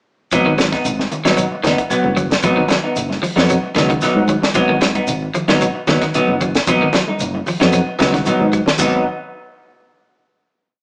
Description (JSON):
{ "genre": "afrobeat", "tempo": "113 BPM", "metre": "4/4", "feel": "straight", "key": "G# dorian", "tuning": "A4 = 440 Hz", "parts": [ { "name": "electric guitar at the edge of break-up", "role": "arpeggios", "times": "0.3-9.0 s", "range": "G#2 to F#3", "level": "-24 LUFS", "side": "equal", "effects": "none" }, { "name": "semi-hollow electric guitar", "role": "stabs", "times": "0.3-9.0 s", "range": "F#3 to D#4", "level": "-20 LUFS", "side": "equal", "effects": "spring reverb" }, { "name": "fingered electric bass", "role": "bass", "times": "0.3-9.0 s", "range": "F#1 to G#2", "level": "-23 LUFS", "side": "equal", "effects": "none" }, { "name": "tight funk drum kit", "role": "drums", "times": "0.3-8.9 s", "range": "crash cymbal, hi-hat, kick drum, snare drum", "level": "-21 LUFS", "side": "equal", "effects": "none" }, { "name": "shekere", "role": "percussion", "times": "0.3-8.9 s", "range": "none", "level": "-31 LUFS", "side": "equal", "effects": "none" }, { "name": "congas", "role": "percussion", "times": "0.6-8.9 s", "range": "none", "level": "-27 LUFS", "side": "equal", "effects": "none" } ], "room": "wet studio reverb, RT60 0.8 s", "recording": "band playing live in one room, small speaker sound", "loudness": "-16 LUFS", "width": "mono", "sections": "0.3-8.8 groove; 8.8-10.8 final chord", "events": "drum fill 8.1-8.8", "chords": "0.3 G#m7" }